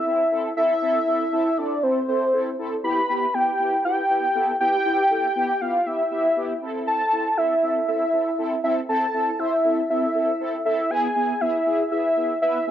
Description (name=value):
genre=pop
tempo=119 BPM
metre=4/4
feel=straight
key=A minor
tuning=A4 = 440 Hz
part: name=wide unison lead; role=melody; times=0.0-12.7 s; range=C5 to B5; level=-20 LUFS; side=equal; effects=cassette tape, tape echo
part: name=mellow synth brass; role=accompaniment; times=0.1-12.7 s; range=B3 to C5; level=-28 LUFS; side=equal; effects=chorus, phaser, cassette tape
room=moderate studio reverb, RT60 0.6 s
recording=home recording on cassette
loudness=-20 LUFS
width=side -10 dB against mid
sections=0.0-12.7 A section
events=none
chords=0.0 Am; 2.8 Em; 6.6 Am; 10.9 E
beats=0.32 | 0.82 1.32 1.83 2.33 | 2.84 3.34 3.85 4.35 | 4.86 5.36 5.86 6.37 | 6.87 7.38 7.88 8.38 | 8.89 9.39 9.90 10.40 | 10.90 11.41 11.91 12.42